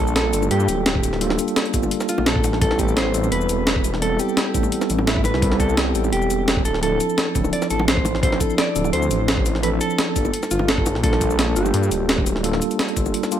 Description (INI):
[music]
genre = liquid drum and bass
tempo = 171 BPM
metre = 4/4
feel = straight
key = unclear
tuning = A4 = 439 Hz
[part]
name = mellow electric guitar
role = melody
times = 0.0-13.4 s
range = E4 to D5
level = -25 LUFS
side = equal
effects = ping-pong delay
[part]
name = mellow tine electric piano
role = accompaniment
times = 0.0-13.4 s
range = F3 to A4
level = -24 LUFS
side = right 1 dB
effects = medium stereo tremolo
[part]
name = swelling detuned saw bass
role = bass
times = 0.0-13.1 s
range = D1 to G2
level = -23 LUFS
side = equal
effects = none
[part]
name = breakbeat sampler-style drum kit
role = drums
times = 0.1-13.4 s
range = hi-hat, shaker, snare drum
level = -23 LUFS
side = equal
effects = studio reverb
[part]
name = bongos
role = percussion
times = 0.4-13.1 s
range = none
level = -28 LUFS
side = left 1 dB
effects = none
[part]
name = electronic kick drum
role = drums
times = 1.0-13.0 s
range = none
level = -22 LUFS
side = equal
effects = studio reverb
[sound]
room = light reverb, digital ambience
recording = none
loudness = -17 LUFS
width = side -10 dB against mid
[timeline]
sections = 0.0-13.4 A section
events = none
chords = 0.0 Gm9; 2.6 Am9; 6.7 Dm9; 10.2 Gm9